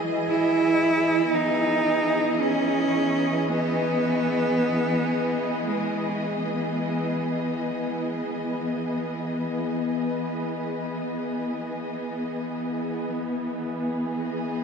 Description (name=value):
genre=ambient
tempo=free time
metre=none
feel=none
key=E major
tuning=A4 = 440 Hz
part: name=dark studio string section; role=sustained chords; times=0.0-14.6 s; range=E3 to D#5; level=-26 LUFS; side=equal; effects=none
part: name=handpan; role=arpeggios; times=0.0-1.5 s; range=none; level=barely audible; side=none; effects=none
part: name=clear cello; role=melody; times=0.3-6.4 s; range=G#3 to E4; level=-25 LUFS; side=right 1 dB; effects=diffuse ambient delay
room=wet shimmer reverb, RT60 8.5 s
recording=dark, warm production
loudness=-23 LUFS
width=side -6 dB against mid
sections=0.3-13.1 A section; 13.1-14.6 B section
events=none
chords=0.3 Emaj7